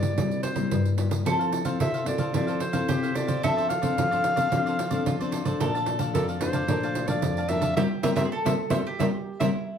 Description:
samba and choro; 110 BPM; 4/4; straight; F major; A4 = 442 Hz
clear clarinet; melody; 0.0-9.5 s; A4 to F5; -29 LUFS; equal
mandolin; second line; 0.0-9.8 s; E4 to Bb4; -32 LUFS; right 2 dB
nylon-string guitar; accompaniment; 0.0-9.5 s; F2 to A4; -28 LUFS; left 4 dB
pandeiro; percussion; 0.0-9.5 s; -29 LUFS; right 3 dB
cavaquinho; accompaniment; 1.3-9.5 s; E4 to A5; -34 LUFS; right 2 dB
wet studio reverb, RT60 0.7 s; heard from further back in the room; -23 LUFS; side -8 dB against mid
0.0-9.8 A section
band accent 7.8-9.8
0.0 C7; 1.3 Fmaj7; 3.4 Dm7/F; 5.6 Bbmaj7; 7.8 C7

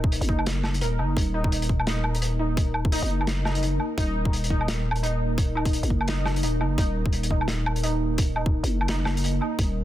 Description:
half-time drum and bass; 171 BPM; 4/4; swing 58% on 16ths, half-time; Eb minor; A4 = 439 Hz
dark analog pad; sustained chords; 0.0-9.8 s; Bb3 to Bb4; -34 LUFS; right 2 dB; chorus, phaser, sidechain pumping
warbly dusty pluck; arpeggios; 0.0-9.8 s; Eb4 to Bb4; -31 LUFS; right 1 dB; lush chorus, dub echo
growling 808-style bass; bass; 0.0-9.8 s; Eb1 to Gb1; -26 LUFS; equal
electronic kick drum; drums; 0.0-9.7 s; -24 LUFS; equal
crunchy breakbeat drum kit; drums; 0.1-9.7 s; hi-hat, snare drum, woodblock; -30 LUFS; equal
studio reverb; dense, heavily limited modern master; -22 LUFS; side -13 dB against mid
0.0-9.8 A section
0.0 Eb5

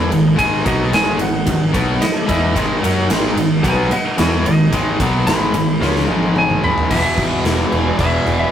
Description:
hard rock; 110 BPM; 4/4; straight; G# minor; A4 = 444 Hz
overdriven tonewheel organ; sustained chords; 0.0-8.5 s; E3 to F#4; -29 LUFS; right 1 dB
heavy high-gain guitar; riff; 0.0-8.5 s; E2 to F#4; -23 LUFS; equal; distortion
tight distorted guitar; riff; 0.0-8.5 s; E2 to F#4; -21 LUFS; left 2 dB; distortion
tight distorted guitar; riff; 0.0-8.5 s; E2 to F#4; -23 LUFS; right 4 dB; distortion
picked electric bass; bass; 0.0-8.4 s; E1 to F#2; -22 LUFS; equal
big rock drum kit; drums; 0.1-8.4 s; crash cymbal, kick drum, ride cymbal, snare drum, toms; -19 LUFS; equal
lightly driven lead guitar; melody; 0.4-8.5 s; F#4 to B5; -22 LUFS; left 1 dB; analog delay
light reverb; rough rehearsal-room recording, tube saturation; -14 LUFS; side -10 dB against mid
0.0-6.9 A section; 6.9-8.5 B section
lead electric guitar solo 0.0-6.9; drum fill 5.8-6.9
0.0 G#m; 6.9 E5

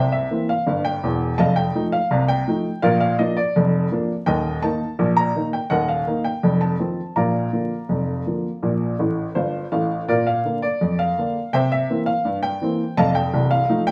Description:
ragtime piano; 83 BPM; 2/4; straight; Bb major; A4 = 440 Hz
clear upright piano; solo; 0.0-13.9 s; C1 to Bb5; -21 LUFS; equal
wet club reverb, RT60 0.8 s; heard from further back in the room, vinyl crackle; -21 LUFS; mono
0.0-10.1 A section; 10.1-13.9 A section
upright piano fill 9.0-10.1
0.0 C7; 1.4 F7; 2.8 Bb; 4.3 Eb5; 6.4 F7; 7.2 Bb; 11.5 C7; 13.0 F7

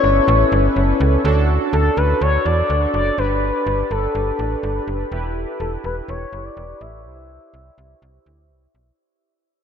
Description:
synth-pop; 124 BPM; 4/4; straight; D major; A4 = 439 Hz
expressive portamento lead; melody; 0.0-8.5 s; A4 to E5; -21 LUFS; left 3 dB; chorus, low-pass filter, analog delay
analog synth brass; accompaniment; 0.0-8.9 s; C#4 to C5; -23 LUFS; right 1 dB; chorus, low-pass filter
slap-like FM bass; bass; 0.0-8.9 s; E1 to E2; -20 LUFS; right 1 dB
moderate huge ambient reverb, RT60 7.8 s; dreamy mix soaked in reverb; -16 LUFS; side -8 dB against mid
0.0-1.2 A section; 1.2-9.0 B section
fade-out 1.2-9.0; filter sweep 1.2-9.0
0.0 Aadd9; 1.2 D; 3.2 G; 5.1 Em; 7.1 C

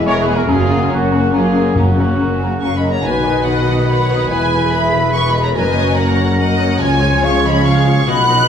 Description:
cinematic, heroic adventure film score; 143 BPM; 3/4; straight; F# major; A4 = 440 Hz
warm studio violin section; melody; 0.0-8.5 s; C#4 to F#6; -21 LUFS; left 1 dB
warm symphonic violin section; second line; 0.0-8.5 s; A#3 to F#5; -25 LUFS; left 3 dB
warm symphonic viola section; accompaniment; 0.0-8.5 s; C#3 to D#5; -23 LUFS; equal
warm French horn section; sustained chords; 0.0-8.5 s; D#3 to F#4; -21 LUFS; left 4 dB
concert harp; arpeggios; 0.0-8.5 s; E2 to A#5; -24 LUFS; left 6 dB
dark symphonic cello section; bass; 0.0-8.5 s; E2 to C#3; -21 LUFS; right 3 dB
rich studio double bass section; bass; 0.0-8.5 s; E1 to C#2; -20 LUFS; right 2 dB
dark clarinet; second line; 0.1-8.4 s; B3 to F#4; -24 LUFS; left 2 dB
hollow flute section; second line; 0.1-8.5 s; A#4 to B5; -22 LUFS; left 2 dB
dark trumpet section; stabs; 0.1-8.5 s; F#4 to A#5; -24 LUFS; right 2 dB
timpani; percussion; 1.8-2.4 s; F#2; -20 LUFS; left 1 dB
clear oboe; second line; 3.1-8.4 s; D#5 to B5; -23 LUFS; right 2 dB
wet recital hall reverb, RT60 1.2 s; recorded in a church or concert hall; -12 LUFS; side -8 dB against mid
0.0-3.0 A section; 3.0-8.5 A section
0.5 F#; 3.0 B; 4.3 E; 5.6 F#; 6.8 C#

